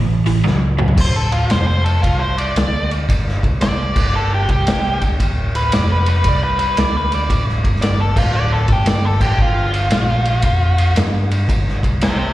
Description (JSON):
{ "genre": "blues rock power trio and southern rock", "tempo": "114 BPM", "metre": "4/4", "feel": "swing 66% on 8ths", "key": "unclear", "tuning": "A4 = 441 Hz", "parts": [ { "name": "overdriven electric guitar", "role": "riff", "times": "0.0-1.0 s", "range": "A2 to F#3", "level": "-19 LUFS", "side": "right 2 dB", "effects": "slapback echo" }, { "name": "overdriven picked electric bass", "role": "bass", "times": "0.0-12.3 s", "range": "D1 to G2", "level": "-18 LUFS", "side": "equal", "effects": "none" }, { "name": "vintage drum kit", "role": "drums", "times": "0.3-12.2 s", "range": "crash cymbal, hi-hat, kick drum, ride cymbal, snare drum, toms", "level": "-18 LUFS", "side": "equal", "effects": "none" }, { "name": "octave-fuzz lead guitar", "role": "melody", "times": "1.0-12.3 s", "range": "F4 to D5", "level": "-21 LUFS", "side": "equal", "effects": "distortion, slapback echo, tape echo" } ], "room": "light reverb, small room ambience", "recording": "live gig heard through the venue's PA, recital hall reverb", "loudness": "-14 LUFS", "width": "side -15 dB against mid", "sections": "1.0-12.3 A section", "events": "drum fill 0.5-1.0; lead electric guitar solo 1.0-12.3", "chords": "0.0 A; 1.0 Dm7; 1.5 F; 2.0 Csus24; 2.6 N.C.; 3.4 Csus2; 3.9 G5; 4.4 C5; 4.9 N.C.; 5.2 Bm/D; 5.7 Bdim/F; 6.3 Csus2; 6.8 Bm/D; 7.6 G5; 8.1 Dm; 8.6 Gsus2; 9.1 Gsus2/A; 9.4 Fsus2/G; 9.9 Bb5; 10.5 N.C.; 11.8 C5" }